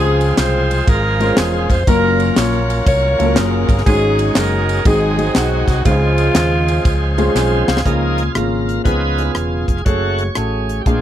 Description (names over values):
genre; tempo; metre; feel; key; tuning
uptempo gospel; 120 BPM; 4/4; swing 65% on 8ths; Db major; A4 = 440 Hz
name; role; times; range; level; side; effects
clear saxophone section; melody; 0.0-7.3 s; Ab3 to Db5; -18 LUFS; equal; none
clear baby grand piano; accompaniment; 0.0-11.0 s; Ab2 to C6; -19 LUFS; left 1 dB; none
bright tonewheel organ; sustained chords; 0.0-11.0 s; Db3 to Db5; -22 LUFS; right 2 dB; fast rotary speaker, overdrive
fingered electric bass; bass; 0.0-11.0 s; Fb1 to Eb2; -18 LUFS; equal; none
tight funk drum kit; drums; 0.2-11.0 s; hi-hat, kick drum, ride cymbal, rim click, snare drum; -16 LUFS; equal; none
tambourine and handclaps; percussion; 0.2-7.8 s; none; -30 LUFS; right 3 dB; none
room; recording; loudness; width
little or no reverb; dry, close 1970s-style studio recording; -13 LUFS; side -11 dB against mid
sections
0.0-7.8 A section; 7.8-11.0 B section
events
grand piano fill 6.8-7.8; drum fill 7.3-7.8; tonewheel organ solo 7.8-11.0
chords
0.0 Dbmaj7; 1.9 Gbmaj7; 3.9 Ab7sus4; 4.9 Ab7; 5.9 Dbmaj7; 7.8 Db6; 8.9 Db7; 9.9 Gbmadd9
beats
0.38 0.88 1.37 | 1.87 2.37 2.87 3.36 | 3.86 4.36 4.86 5.36 | 5.85 6.35 6.85 7.35 | 7.85 8.35 8.85 9.35 | 9.85 10.36 10.86